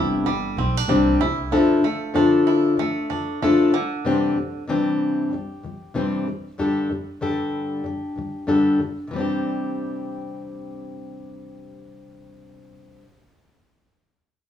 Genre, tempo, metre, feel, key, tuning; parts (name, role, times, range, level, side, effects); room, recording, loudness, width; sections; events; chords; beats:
pop; 95 BPM; 4/4; swing 60% on 16ths; C major; A4 = 439 Hz
fingerpicked plugged-in steel-string acoustic guitar; accompaniment; 0.0-13.1 s; G2 to A4; -21 LUFS; left 2 dB
bluegrass banjo; arpeggios; 0.0-4.6 s; D3 to E4; -26 LUFS; right 5 dB
upright bass; bass; 0.0-1.5 s; G1 to C2; -26 LUFS; right 1 dB
moderate large studio reverb, RT60 1.1 s; band playing live in one room, small room ambience; -19 LUFS; side -9 dB against mid
0.0-9.1 A section; 9.1-11.6 B section
0.0 Cadd9; 1.5 Dmadd9; 3.7 Cadd9; 6.6 Gsus2; 9.1 Cadd9
0.26 0.89 | 1.52 2.15 2.78 3.42 | 4.05 4.68 5.31 5.95 | 6.58 7.21 7.84 8.48 | 9.11 9.74 10.38 11.01